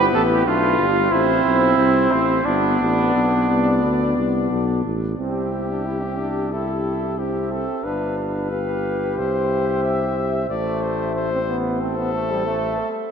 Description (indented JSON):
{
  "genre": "classical, brass quintet",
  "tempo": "91 BPM",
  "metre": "4/4",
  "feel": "straight",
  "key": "C major",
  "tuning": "A4 = 441 Hz",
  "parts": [
    { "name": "warm trumpet", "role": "melody", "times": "0.0-13.1 s", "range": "G4 to E5", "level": "-27 LUFS", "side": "left 5 dB", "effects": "none" },
    { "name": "clear flugelhorn", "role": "second line", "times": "0.0-13.1 s", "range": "C4 to F5", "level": "-24 LUFS", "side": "right 3 dB", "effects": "none" },
    { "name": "brilliant trombone", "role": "accompaniment", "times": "0.0-12.9 s", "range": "G3 to G4", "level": "-25 LUFS", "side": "right 2 dB", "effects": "none" },
    { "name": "warm French horn", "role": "accompaniment", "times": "0.0-13.1 s", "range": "B3 to C5", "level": "-26 LUFS", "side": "left 3 dB", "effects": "none" },
    { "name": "mellow bass trombone", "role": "bass", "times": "0.0-12.8 s", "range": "G1 to D2", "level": "-24 LUFS", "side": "equal", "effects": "none" }
  ],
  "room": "wet cathedral reverb, RT60 5.8 s",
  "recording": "in a vast, echoing space",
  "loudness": "-18 LUFS",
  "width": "side -7 dB against mid",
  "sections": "0.0-5.2 A section; 5.2-13.1 B section",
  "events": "none",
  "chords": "0.0 G; 1.1 Am; 2.5 G; 5.2 C; 7.8 G7; 9.2 C; 10.5 Am"
}